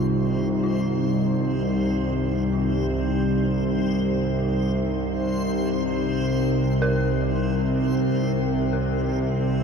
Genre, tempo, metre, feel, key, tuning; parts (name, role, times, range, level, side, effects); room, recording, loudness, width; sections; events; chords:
ambient; free time; C minor; A4 = 441 Hz
dark analog pad; sustained chords; 0.0-9.6 s; G3 to C5; -26 LUFS; left 1 dB; chorus
dark detuned synth bell; arpeggios; 0.0-9.6 s; F4 to Bb4; -33 LUFS; left 2 dB; chorus, ping-pong delay
bowed-like drone; drone; 0.0-9.6 s; C2 to C3; -23 LUFS; right 1 dB; built-in reverb
backwards swelling texture; texture; 0.0-9.6 s; C4 to C5; -35 LUFS; right 1 dB; built-in reverb
wet huge ambient reverb, RT60 7.5 s; in a vast, echoing space; -21 LUFS; side -6 dB against mid
0.0-9.6 A section
filter sweep on synth drone 0.0-9.6
0.0 Cm